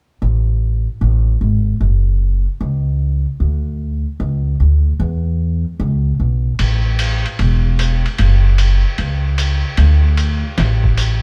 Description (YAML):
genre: country, western swing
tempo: 150 BPM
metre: 4/4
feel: swing 67% on 8ths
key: A major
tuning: A4 = 442 Hz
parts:
  - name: upright bass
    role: bass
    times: 0.2-11.2 s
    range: E1 to E2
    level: -16 LUFS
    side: equal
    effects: none
  - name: lo-fi sampler-style drum kit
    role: drums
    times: 6.6-11.1 s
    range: hi-hat, kick drum, ride cymbal, snare drum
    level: -25 LUFS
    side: equal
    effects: none
room: wet stone room reverb, RT60 1.3 s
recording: band playing live in one room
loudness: -16 LUFS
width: mono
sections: 0.2-6.6 A section; 6.6-11.2 B section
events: none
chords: none